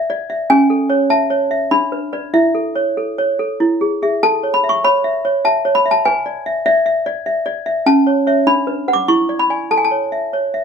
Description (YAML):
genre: classical, lullaby for toy piano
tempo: 98 BPM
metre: 3/4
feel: rubato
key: A major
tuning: A4 = 440 Hz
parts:
  - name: toy piano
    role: solo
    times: 0.0-10.6 s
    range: C#4 to D6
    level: -14 LUFS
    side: equal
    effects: none
room: light reverb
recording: close, detailed microphones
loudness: -14 LUFS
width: side -6 dB against mid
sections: 0.0-10.6 A section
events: none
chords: 0.5 A/C#; 1.7 Bm/D; 2.3 A/E; 3.6 E; 4.2 A; 6.1 E7/B; 7.9 A/C#; 8.5 Bm/D; 9.1 E7; 9.7 A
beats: | 0.50 1.10 1.71 | 2.34 2.97 3.60 | 4.23 4.84 5.45 | 6.05 6.66 7.26 | 7.86 8.47 9.08 | 9.71 10.34